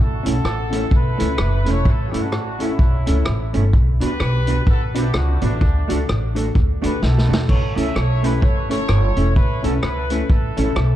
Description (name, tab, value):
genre	ska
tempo	128 BPM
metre	4/4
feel	swing 59% on 8ths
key	unclear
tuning	A4 = 440 Hz
part	warm horn section	melody	0.0-11.0 s	A3 to E5	-27 LUFS	right 1 dB	tape echo
part	upright bass	bass	0.0-11.0 s	E1 to D2	-20 LUFS	equal	none
part	warm upright piano	stabs	0.2-10.7 s	C#4 to B4	-27 LUFS	left 4 dB	none
part	vintage hollow-body jazz guitar	accompaniment	0.3-10.7 s	A3 to F#4	-27 LUFS	right 4 dB	none
part	vintage drum kit	drums	0.3-10.9 s	crash cymbal, hi-hat, kick drum, rim click, snare drum	-20 LUFS	equal	none
room	light reverb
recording	dark, warm production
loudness	-16 LUFS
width	side -12 dB against mid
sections	0.0-11.0 A section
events	drum fill 7.0-7.5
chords	0.0 A; 3.7 Bm; 5.6 D; 7.5 A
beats	0.44 0.91 1.38 | 1.85 2.33 2.80 3.27 | 3.74 4.21 4.67 5.14 | 5.61 6.08 6.55 7.02 | 7.49 7.96 8.42 8.89 | 9.36 9.83 10.30 10.77